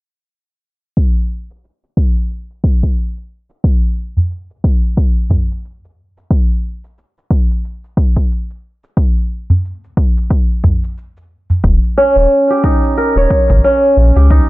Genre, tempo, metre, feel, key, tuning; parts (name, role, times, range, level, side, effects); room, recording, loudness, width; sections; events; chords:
organic downtempo; 90 BPM; 4/4; swing 58% on 16ths; Eb mixolydian; A4 = 440 Hz
cabasa; drums; 1.0-14.5 s; -58 LUFS; right 1 dB; overdrive
electronic kick drum; drums; 1.0-14.5 s; -13 LUFS; equal; overdrive
udu; percussion; 4.2-5.5, 9.5-11.6 s; -13 LUFS; equal
warm sub bass; bass; 11.6-14.4 s; Eb1 to Db2; -10 LUFS; equal; sidechain pumping
kora; arpeggios; 12.0-14.5 s; Db4 to Db5; -11 LUFS; right 1 dB; analog delay
studio reverb; dry, gritty hardware recording, low-pass filter; -12 LUFS; side -19 dB against mid
1.0-14.5 A section
filter sweep 1.0-14.5
1.0 N.C.; 11.6 Eb7(no3)